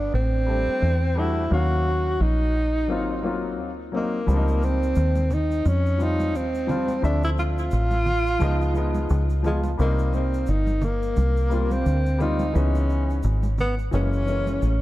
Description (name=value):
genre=hip hop, jazz-hop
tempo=87 BPM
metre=4/4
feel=swing 57% on 16ths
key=unclear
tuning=A4 = 440 Hz
part: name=breathy tenor saxophone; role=melody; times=0.0-14.8 s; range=Ab3 to Gb4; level=-26 LUFS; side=equal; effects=tape echo
part: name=deep dub fingered electric bass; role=bass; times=0.0-14.8 s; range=Gb1 to F2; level=-22 LUFS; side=equal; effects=none
part: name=warm upright piano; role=accompaniment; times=0.5-14.7 s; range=Fb3 to F5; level=-29 LUFS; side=left 3 dB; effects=tape echo
part: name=tube shaker and congas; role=percussion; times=4.3-14.8 s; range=none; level=-35 LUFS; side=right 2 dB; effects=tape echo
room=light reverb, studio reverb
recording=echo-heavy mix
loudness=-20 LUFS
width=side -16 dB against mid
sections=0.0-14.8 A section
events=none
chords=0.0 C69; 1.5 Ebm9; 2.9 Ab13; 4.3 Dbmaj9#11; 7.0 Dm7; 8.4 Db9; 9.8 Cm7; 12.5 Dbm7; 13.9 Gb9